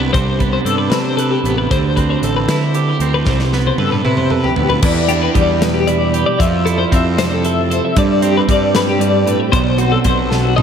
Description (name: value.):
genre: math rock and midwest emo.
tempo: 77 BPM (dotted quarters).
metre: 6/8.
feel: straight.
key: C major.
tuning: A4 = 440 Hz.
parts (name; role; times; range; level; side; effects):
twelve-string electric guitar; accompaniment; 0.0-10.6 s; G2 to D5; -18 LUFS; right 7 dB; none.
twelve-string electric guitar; arpeggios; 0.0-10.6 s; F#4 to E5; -18 LUFS; left 4 dB; tremolo, ping-pong delay.
fuzz picked electric bass; bass; 0.0-10.6 s; A1 to D3; -18 LUFS; equal; overdrive.
modern studio drum kit; drums; 0.1-10.6 s; crash cymbal, hi-hat, kick drum, snare drum, toms; -20 LUFS; left 1 dB; none.
room: wet church reverb, RT60 3.9 s.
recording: dreamy mix soaked in reverb.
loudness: -12 LUFS.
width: side -8 dB against mid.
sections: 0.0-4.8 A section; 4.8-10.6 B section.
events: drum fill 3.3-4.8, 10.3-10.6.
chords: 0.0 Csus2; 1.7 D9sus4; 3.3 Cmaj7; 4.8 Em7; 6.4 Fmaj7; 8.0 G7sus4; 9.5 B7(no3).